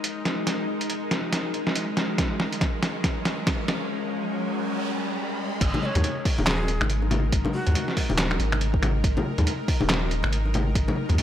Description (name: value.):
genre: deep dubstep.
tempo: 140 BPM.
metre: 4/4.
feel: swing 59% on 16ths, half-time.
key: unclear.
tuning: A4 = 440 Hz.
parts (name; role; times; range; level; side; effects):
bowed-like drone; sustained chords; 0.0-11.2 s; G#3 to A#4; -30 LUFS; left 1 dB; built-in reverb.
trip hop sampler-style drum kit; drums; 0.0-11.2 s; crash cymbal, finger snaps, handclaps, hi-hat, snare drum; -27 LUFS; equal; overdrive.
riser and noise sweep; sound effects; 1.1-5.6 s; none; -35 LUFS; equal; none.
electronic kick drum; drums; 2.2-10.9 s; none; -26 LUFS; equal; none.
saturated sub bass; bass; 5.6-11.2 s; D#1 to D#2; -25 LUFS; equal; none.
congas and bongos; percussion; 5.7-11.2 s; none; -28 LUFS; left 2 dB; dub echo.
breathy bright shakuhachi; melody; 5.8-8.0 s; F#4 to D#5; -34 LUFS; equal; vintage 12-bit sampler grit, dub echo.
room: light reverb.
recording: dry, gritty hardware recording.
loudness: -23 LUFS.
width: side -11 dB against mid.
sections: 0.0-5.6 A section; 5.6-11.2 B section.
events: build-up 0.0-5.6; drum fill 0.0-3.9; riser 1.1-5.6; break 3.9-5.6; noise sweep 3.9-5.6; drop 5.6-11.2.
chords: 0.0 G#5.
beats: 0.04 | 0.47 0.90 1.32 1.75 | 2.18 2.61 3.04 3.47 | 3.90 4.33 4.75 5.18 | 5.61 6.04 6.47 6.90 | 7.33 7.75 8.18 8.61 | 9.04 9.47 9.90 10.32 | 10.75 11.18.